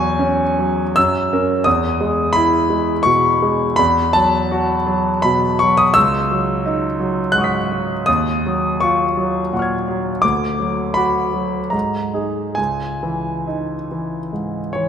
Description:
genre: classical, impressionist solo piano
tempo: 66-87 BPM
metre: 3/4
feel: rubato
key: C# dorian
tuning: A4 = 440 Hz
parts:
  - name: clear concert grand piano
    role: solo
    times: 0.0-14.9 s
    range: C#2 to B6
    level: -15 LUFS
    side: equal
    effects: none
room: moderate concert hall reverb, RT60 2.4 s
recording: none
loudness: -15 LUFS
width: side -8 dB against mid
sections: 0.0-14.9 A section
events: none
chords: 0.0 E69; 1.0 F#; 1.7 Emaj7; 3.8 B7sus4/E; 6.0 C#m11; 8.1 D#m11; 10.2 D; 11.7 G#5; 12.6 C#madd9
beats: 0.19 0.96 | 1.66 2.36 3.06 | 3.79 4.52 5.25 | 5.96 6.65 7.34 | 8.07 8.81 9.52 | 10.23 10.97 11.74 | 12.58 13.48 14.34

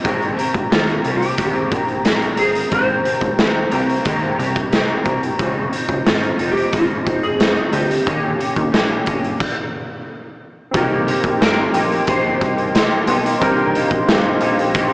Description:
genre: indie pop, bedroom pop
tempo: 90 BPM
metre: 4/4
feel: straight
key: Ab major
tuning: A4 = 440 Hz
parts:
  - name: electric guitar through a small old amp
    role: accompaniment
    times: 0.0-14.9 s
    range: C3 to Bb4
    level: -20 LUFS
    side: equal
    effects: analog chorus, warbly pitch drift
  - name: plucky analog bass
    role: bass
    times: 0.0-14.9 s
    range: F1 to Eb2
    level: -24 LUFS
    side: equal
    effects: none
  - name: raw garage drum kit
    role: drums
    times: 0.0-14.9 s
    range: crash cymbal, hi-hat, kick drum, snare drum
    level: -19 LUFS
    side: equal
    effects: vintage 12-bit sampler grit
  - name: clean lap steel guitar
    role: melody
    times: 0.7-14.7 s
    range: F4 to C5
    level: -22 LUFS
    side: equal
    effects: ensemble chorus, tape echo
  - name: barky tine electric piano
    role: accompaniment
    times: 10.7-14.9 s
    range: C4 to C5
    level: -22 LUFS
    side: equal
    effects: none
  - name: hollow soft pad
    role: sustained chords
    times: 11.1-14.9 s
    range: Bb4 to C6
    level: -23 LUFS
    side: equal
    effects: chorus
room: moderate spring reverb, RT60 1.7 s, studio ambience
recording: small speaker sound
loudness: -15 LUFS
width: side -25 dB against mid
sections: 0.0-10.7 A section; 10.7-14.9 B section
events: stop 9.4-10.7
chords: 0.0 Abmaj9; 5.4 Dbmaj9; 8.1 Eb7; 10.7 Cm7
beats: | 0.05 0.72 1.38 2.05 | 2.72 3.39 4.06 4.73 | 5.39 6.06 6.73 7.40 | 8.07 8.74 9.41 10.07 | 10.74 11.41 12.08 12.74 | 13.41 14.08 14.75

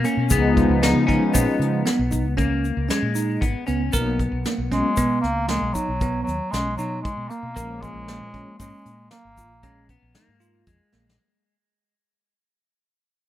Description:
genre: progressive instrumental, band music in an uneven meter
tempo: 116 BPM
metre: 7/4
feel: straight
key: Bb phrygian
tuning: A4 = 438 Hz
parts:
  - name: electric guitar at the edge of break-up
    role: second line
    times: 0.0-11.2 s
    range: Ab3 to Eb4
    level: -27 LUFS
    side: left 4 dB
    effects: ping-pong delay
  - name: bell-like tine electric piano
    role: arpeggios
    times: 0.0-11.1 s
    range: A#3 to Bb4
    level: -28 LUFS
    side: right 4 dB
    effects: phaser
  - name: mellow fretless electric bass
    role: bass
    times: 0.0-11.2 s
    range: Ab1 to Db3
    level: -26 LUFS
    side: equal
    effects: none
  - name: soft brush drum kit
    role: drums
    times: 0.0-11.2 s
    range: hi-hat, kick drum, snare drum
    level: -26 LUFS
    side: equal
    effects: none
  - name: egg shaker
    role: percussion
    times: 0.0-10.8 s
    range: none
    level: -32 LUFS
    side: left 6 dB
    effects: none
  - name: brassy analog pad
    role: accompaniment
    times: 0.3-8.5 s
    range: F3 to Eb4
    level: -23 LUFS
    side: left 1 dB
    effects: chorus
  - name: clear bass clarinet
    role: melody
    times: 4.7-9.8 s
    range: Gb3 to Bb3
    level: -27 LUFS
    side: equal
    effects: none
room: moderate plate reverb, RT60 1.4 s, small room ambience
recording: rough home demo mix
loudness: -19 LUFS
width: side -12 dB against mid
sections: 0.0-11.2 A section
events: fade-out 0.0-11.2; drum fill 10.9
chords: 0.3 Db9; 3.9 Abm9/Cb; 7.6 Bbm7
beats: | 0.31 0.82 1.34 1.86 2.38 2.90 3.42 | 3.93 4.45 4.97 5.49 6.01 6.53 7.05 | 7.57 8.08 8.60 9.12 9.64 10.15 10.67

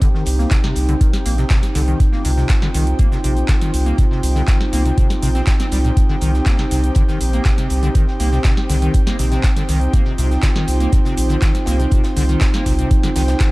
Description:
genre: acid house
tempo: 121 BPM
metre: 4/4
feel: straight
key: C minor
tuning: A4 = 440 Hz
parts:
  - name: dark analog pad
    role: sustained chords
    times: 0.0-13.5 s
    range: C4 to G4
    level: -24 LUFS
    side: right 1 dB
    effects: chorus, sidechain pumping
  - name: deep acid bass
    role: riff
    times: 0.0-13.5 s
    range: Bb2 to C4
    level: -25 LUFS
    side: equal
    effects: lush chorus, sidechain pumping
  - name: booming analog drum machine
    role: drums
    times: 0.0-13.5 s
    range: handclaps, hi-hat, shaker, snare drum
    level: -27 LUFS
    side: equal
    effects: overdrive
  - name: electronic kick drum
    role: drums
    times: 0.0-13.5 s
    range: none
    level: -16 LUFS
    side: equal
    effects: overdrive
  - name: modern studio drum kit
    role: drums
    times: 0.0-13.5 s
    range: hi-hat, snare drum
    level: -38 LUFS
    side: left 1 dB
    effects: none
  - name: airy breathy pad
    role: texture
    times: 0.0-13.5 s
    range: Eb4 to G5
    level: -27 LUFS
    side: equal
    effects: chorus, sidechain pumping
  - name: saturated sub bass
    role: bass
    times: 0.3-13.3 s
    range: Bb1 to C2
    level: -17 LUFS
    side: equal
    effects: sidechain pumping
room: little or no reverb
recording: dark, warm production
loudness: -14 LUFS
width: side -21 dB against mid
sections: 0.0-13.5 A section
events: none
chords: 0.0 Cm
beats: | 0.02 0.51 1.01 1.50 | 2.00 2.50 2.99 3.49 | 3.98 4.48 4.98 5.47 | 5.97 6.46 6.96 7.46 | 7.95 8.45 8.94 9.44 | 9.94 10.43 10.93 11.42 | 11.92 12.41 12.91 13.41

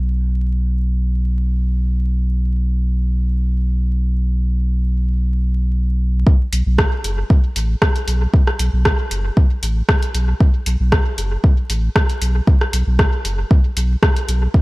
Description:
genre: dub techno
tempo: 116 BPM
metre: 4/4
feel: swing 54% on 16ths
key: unclear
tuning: A4 = 439 Hz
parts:
  - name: warm sub bass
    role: bass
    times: 0.0-14.5 s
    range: F#1 to B1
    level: -17 LUFS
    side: equal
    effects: tube saturation, sidechain pumping
  - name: electronic kick drum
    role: drums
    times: 6.3-14.6 s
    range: none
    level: -14 LUFS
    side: equal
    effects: none
  - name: deep house drum kit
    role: drums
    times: 6.5-14.4 s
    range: hi-hat, rim click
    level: -22 LUFS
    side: equal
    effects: dub echo
room: little or no reverb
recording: vinyl crackle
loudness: -15 LUFS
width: side -22 dB against mid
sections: 0.0-6.3 A section; 6.3-14.6 B section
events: none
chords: none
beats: | 0.06 0.58 1.09 1.61 | 2.13 2.65 3.16 3.68 | 4.20 4.71 5.23 5.75 | 6.27 6.78 7.30 7.82 | 8.34 8.85 9.37 9.89 | 10.40 10.92 11.44 11.96 | 12.47 12.99 13.51 14.03 | 14.54

